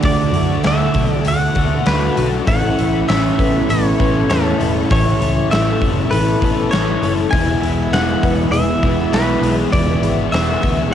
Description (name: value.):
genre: rock, shoegaze and dream pop.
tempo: 99 BPM.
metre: 4/4.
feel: straight.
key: unclear.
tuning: A4 = 438 Hz.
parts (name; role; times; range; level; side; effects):
string machine, cellos; sustained chords; 0.0-10.9 s; G#4 to E6; -28 LUFS; equal; ensemble chorus, cassette tape.
picked plugged-in twelve-string acoustic guitar; arpeggios; 0.0-10.9 s; E3 to A4; -26 LUFS; left 7 dB; analog chorus, cassette tape, tape echo.
crunchy overdriven guitar; riff; 0.0-10.9 s; A2 to F#4; -20 LUFS; right 8 dB; reverse reverb, cassette tape.
raw garage guitar; riff; 0.0-10.9 s; E2 to F#4; -22 LUFS; left 9 dB; overdrive, lush chorus, cassette tape.
vintage muted fingered electric bass; bass; 0.0-10.9 s; E1 to F#2; -22 LUFS; equal; tube saturation.
huge arena drum kit; drums; 0.0-10.8 s; hi-hat, kick drum, snare drum; -20 LUFS; equal; cassette tape.
direct-recorded clean electric guitar; melody; 0.1-10.9 s; A4 to G#5; -22 LUFS; equal; cassette tape, tape echo.
room: light reverb.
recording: home recording on cassette.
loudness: -14 LUFS.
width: side -9 dB against mid.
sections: 0.0-10.9 A section.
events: none.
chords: 0.0 Dadd9; 2.5 Aadd9; 7.3 E.